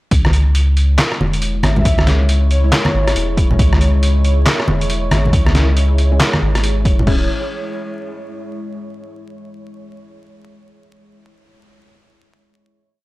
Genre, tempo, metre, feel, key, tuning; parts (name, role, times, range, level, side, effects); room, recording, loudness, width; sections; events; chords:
deep dubstep; 138 BPM; 4/4; swing 62% on 16ths, half-time; C# minor; A4 = 440 Hz
deep dark ambient pad; sustained chords; 1.1-7.3 s; G#3 to C#5; -25 LUFS; equal; chorus, built-in reverb
soft dub sub bass; bass; 0.1-7.3 s; C#1 to C#2; -15 LUFS; equal
electronic kick drum; drums; 0.1-7.2 s; -16 LUFS; equal; overdrive
trip hop sampler-style drum kit; drums; 0.1-7.2 s; crash cymbal, handclaps, hi-hat, rim click, snare drum; -20 LUFS; equal
congas; percussion; 0.3-7.1 s; -20 LUFS; equal
filtered dub chord stab; stabs; 1.6-7.2 s; G#3 to E4; -27 LUFS; left 2 dB; phaser, dub echo
breathy flute-like synth lead; melody; 1.8-3.1 s; C#5 to E5; -26 LUFS; left 1 dB; analog chorus, dub echo
little or no reverb; dry, gritty hardware recording, transformer saturation, vinyl crackle; -12 LUFS; side -19 dB against mid
0.1-7.1 drop; 7.1-8.8 final chord
drop 0.1-7.1
0.1 C#m